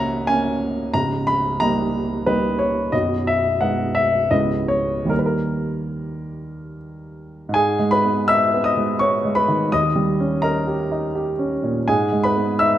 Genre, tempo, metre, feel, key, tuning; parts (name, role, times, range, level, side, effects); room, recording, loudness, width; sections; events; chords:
classical, romantic character piece for solo piano; 70-92 BPM; 3/4; rubato; G# minor; A4 = 440 Hz
warm baby grand piano; solo; 0.0-12.8 s; B0 to E6; -18 LUFS; equal
moderate recital hall reverb, RT60 1.7 s; -18 LUFS; side -12 dB against mid
0.0-7.5 A section; 7.5-12.8 B section
0.0 C#m6; 0.9 D#7/C#; 2.9 G#m/B; 4.3 C#m7; 5.1 D#; 7.5 G#m; 9.7 D#7; 11.9 G#m